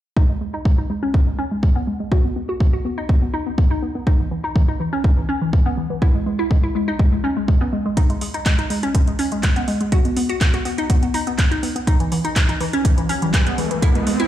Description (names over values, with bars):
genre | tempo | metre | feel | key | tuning
progressive house | 123 BPM | 4/4 | straight | unclear | A4 = 441 Hz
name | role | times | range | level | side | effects
glassy wavetable pluck | arpeggios | 0.2-14.3 s | E3 to F#4 | -22 LUFS | equal | chorus, phaser, sidechain pumping, digital delay
electronic kick drum | drums | 0.2-13.9 s | none | -17 LUFS | equal | overdrive, studio ambience
house drum kit | drums | 8.0-14.3 s | handclaps, hi-hat | -26 LUFS | right 1 dB | studio ambience
riser | sound effects | 12.6-14.3 s | none | -26 LUFS | right 1 dB | none
room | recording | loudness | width
little or no reverb | played on a big sound system in a bare room, large studio reverb | -17 LUFS | side -12 dB against mid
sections
0.2-14.3 A section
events
filter sweep on synth arpeggio sound 0.2-14.3; riser 12.6-14.3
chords
none